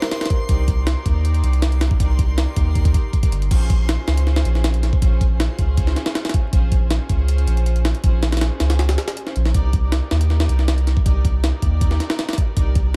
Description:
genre	drum and bass, jungle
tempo	159 BPM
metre	4/4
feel	straight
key	Bb dorian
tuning	A4 = 440 Hz
part	warm chamber string section	sustained chords	0.0-13.0 s	Db4 to D5	-34 LUFS	equal	vintage 12-bit sampler grit
part	jungle sampler-style drum kit	drums	0.0-12.8 s	crash cymbal, hi-hat, kick drum, snare drum	-22 LUFS	equal	none
part	backwards swelling texture	texture	0.0-3.5 s	C6	-40 LUFS	equal	built-in reverb
part	soft dub sub bass	bass	0.5-13.0 s	G1 to Eb2	-20 LUFS	equal	none
room	little or no reverb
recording	echo-heavy mix, vinyl crackle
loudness	-19 LUFS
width	mono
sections	0.0-3.5 A section; 3.5-13.0 A section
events	drop 0.0-3.5, 3.5-13.0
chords	0.0 Cm7; 3.5 Bbm7; 9.5 Cm7

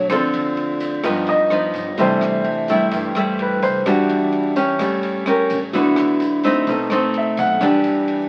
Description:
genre	bossa nova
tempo	128 BPM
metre	4/4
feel	straight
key	unclear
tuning	A4 = 439 Hz
part	nylon-string guitar	accompaniment	0.0-8.3 s	G2 to Bb4	-20 LUFS	equal	none
part	warm concert grand piano	accompaniment	0.0-8.3 s	D3 to F#5	-24 LUFS	equal	none
part	upright bass	bass	0.0-8.3 s	G1 to G2	-38 LUFS	equal	none
part	compact cocktail drum kit	drums	0.1-8.2 s	kick drum, ride cymbal, rim click	-35 LUFS	equal	none
part	tube shaker	percussion	0.1-8.1 s	none	-47 LUFS	equal	none
room	moderate club reverb, RT60 0.7 s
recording	very old 78 rpm record, vinyl crackle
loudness	-19 LUFS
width	mono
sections	0.0-8.3 A section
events	grand piano solo 0.0-8.3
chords	0.1 Dm7; 1.0 Gaug7; 2.0 C6; 3.9 Em9; 4.8 A7b9; 5.7 D6; 6.7 B7b9; 7.6 Em7

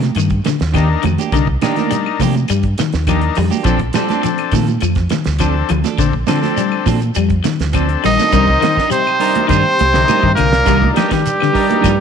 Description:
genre	afrobeat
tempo	103 BPM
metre	4/4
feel	straight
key	C dorian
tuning	A4 = 440 Hz
part	electric guitar at the edge of break-up	arpeggios	0.0-12.0 s	D3 to G3	-20 LUFS	left 10 dB	lush chorus
part	clean electric guitar	stabs	0.0-12.0 s	Eb3 to Bb4	-22 LUFS	right 10 dB	none
part	deep dub fingered electric bass	bass	0.0-12.0 s	Bb1 to C3	-17 LUFS	equal	none
part	damped 70s drum kit	drums	0.0-12.0 s	hi-hat, kick drum, snare drum	-22 LUFS	right 3 dB	none
part	congas	percussion	0.0-11.8 s	none	-23 LUFS	right 12 dB	none
part	shekere	percussion	0.1-12.0 s	none	-28 LUFS	right 7 dB	none
part	claves	percussion	0.2-12.0 s	none	-31 LUFS	left 13 dB	none
part	combo organ	accompaniment	0.7-11.9 s	C4 to Bb4	-22 LUFS	left 11 dB	none
part	growling tenor saxophone	second line	8.0-12.0 s	G3 to Eb4	-22 LUFS	right 11 dB	none
part	muted trombone section	second line	8.0-12.0 s	G2 to Eb3	-25 LUFS	left 10 dB	none
part	bright trumpet	melody	8.1-12.0 s	G4 to Eb5	-15 LUFS	equal	slapback echo
room	moderate echo chamber reverb, RT60 1.7 s, studio reverb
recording	1960s-style stereo with parts hard left and right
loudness	-12 LUFS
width	side -7 dB against mid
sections	0.0-8.3 A section; 8.3-12.0 B section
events	none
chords	0.0 Cm9; 3.7 Bbmaj9; 8.3 Cm9

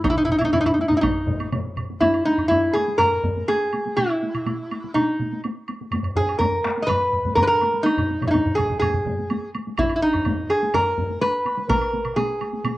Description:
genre	japanese traditional, taiko drum ensemble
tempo	124 BPM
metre	4/4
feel	straight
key	Eb miyako bushi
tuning	A4 = 440 Hz
part	lap resonator guitar	melody	0.0-12.8 s	Eb4 to Eb5	-20 LUFS	equal	cassette tape
part	solo taiko drums	percussion	0.0-12.8 s	none	-31 LUFS	right 2 dB	none
part	solo taiko drums	percussion	0.0-1.1, 9.8-11.8 s	none	-29 LUFS	equal	none
part	taiko ensemble	percussion	0.0-11.1 s	none	-27 LUFS	left 1 dB	none
part	woodblock	percussion	0.0-12.8 s	none	-33 LUFS	right 3 dB	none
part	taiko ensemble	percussion	0.1-12.8 s	none	-30 LUFS	equal	none
room	moderate spring reverb, RT60 1.3 s, studio reverb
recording	home recording on cassette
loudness	-19 LUFS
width	side -17 dB against mid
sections	0.0-2.0 A section; 2.0-12.8 B section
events	speeding up 0.0-12.8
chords	none

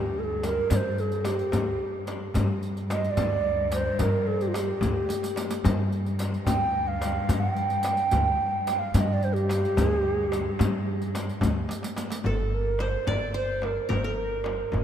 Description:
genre	Arabic maqam ensemble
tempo	73 BPM (dotted quarters)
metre	6/8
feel	straight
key	G maqam bayati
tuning	A4 = 439 Hz
part	mellow ney	melody	0.0-14.8 s	F4 to G5	-28 LUFS	right 2 dB	none
part	upright bass	bass	0.0-14.8 s	F#1 to G2	-29 LUFS	equal	none
part	rich cello	drone	0.0-12.3 s	G2	-35 LUFS	left 1 dB	stereo widening
part	darbuka	percussion	0.4-14.8 s	none	-33 LUFS	equal	none
part	frame drum	percussion	0.4-14.8 s	none	-32 LUFS	left 4 dB	none
part	riq	percussion	0.4-12.2 s	none	-40 LUFS	right 2 dB	none
part	qanun	second line	12.3-14.8 s	A4 to D5	-38 LUFS	equal	none
room	moderate cathedral reverb, RT60 4.9 s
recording	in a vast, echoing space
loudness	-24 LUFS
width	side -9 dB against mid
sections	0.0-12.3 A section; 12.3-14.8 B section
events	drum fill 5.1-5.7, 11.7-12.3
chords	none

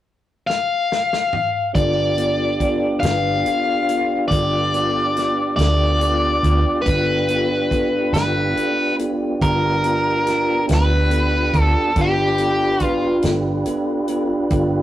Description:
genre	slow blues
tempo	47 BPM (dotted quarters)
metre	12/8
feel	straight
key	G mixolydian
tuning	A4 = 440 Hz
part	biting overdriven guitar	melody	0.5-13.2 s	G4 to F5	-19 LUFS	left 2 dB	none
part	warm soul drum kit	drums	0.5-14.7 s	hi-hat, kick drum, snare drum, toms	-25 LUFS	equal	none
part	tonewheel organ	sustained chords	1.7-14.8 s	B3 to B4	-23 LUFS	right 2 dB	slow rotary speaker
part	bell-like tine electric piano	accompaniment	1.8-14.8 s	B3 to A5	-26 LUFS	equal	medium stereo tremolo
part	vintage muted fingered electric bass	bass	1.8-14.8 s	G1 to D2	-22 LUFS	right 1 dB	none
room	moderate stone room reverb, RT60 1.1 s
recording	rough rehearsal-room recording, tube saturation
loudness	-16 LUFS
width	side -13 dB against mid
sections	0.0-1.8 A section; 1.8-14.8 B section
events	drum fill 0.5-1.8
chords	0.0 N.C.; 1.8 G7

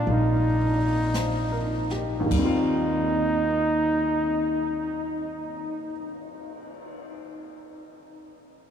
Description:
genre	jazz ballad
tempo	49-59 BPM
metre	4/4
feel	swing 69% on 8ths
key	Eb major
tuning	A4 = 440 Hz
part	warm flugelhorn	melody	0.0-5.9 s	D4 to Eb4	-26 LUFS	equal	none
part	clear upright piano	accompaniment	0.0-8.7 s	Eb2 to D5	-30 LUFS	left 1 dB	none
part	upright bass	bass	0.0-5.9 s	Bb1 to Eb2	-28 LUFS	equal	none
part	jazz brush drum kit	drums	0.1-7.0 s	brushed snare drum, crash cymbal, cymbal swell, hi-hat, kick drum, snare drum	-39 LUFS	equal	none
room	wet huge ambient reverb, RT60 8.6 s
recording	in a vast, echoing space, small room ambience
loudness	-22 LUFS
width	side -8 dB against mid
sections	0.0-2.3 A section; 2.3-7.2 B section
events	slowing down 0.0-2.3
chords	0.0 Eb69

